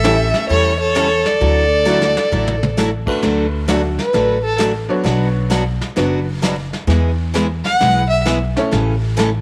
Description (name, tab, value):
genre	country, western swing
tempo	131 BPM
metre	4/4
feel	swing 65% on 8ths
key	D major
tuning	A4 = 440 Hz
part	warm violin	melody	0.0-4.6, 7.7-8.2 s	A4 to F#5	-19 LUFS	equal	none
part	clear fiddle	second line	0.0-2.8 s	A4	-23 LUFS	equal	none
part	picked steel-string acoustic guitar	accompaniment	0.0-9.3 s	B2 to A4	-23 LUFS	equal	none
part	tack piano	accompaniment	0.0-8.7 s	F#3 to C#5	-24 LUFS	equal	none
part	upright bass	bass	0.0-9.4 s	F#1 to E2	-22 LUFS	equal	tube saturation
part	vintage brush drum kit	drums	0.0-9.4 s	brushed snare drum, crash cymbal, hi-hat, kick drum, snare drum, toms	-26 LUFS	equal	none
room	moderate spring reverb, RT60 1.6 s, studio reverb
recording	none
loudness	-17 LUFS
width	mono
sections	0.0-3.2 A section; 3.2-9.4 B section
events	drum fill 1.9-2.8; violin solo 3.2-9.4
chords	0.0 A7; 1.4 Dadd9; 3.2 D; 5.1 Bm; 6.9 E; 8.7 A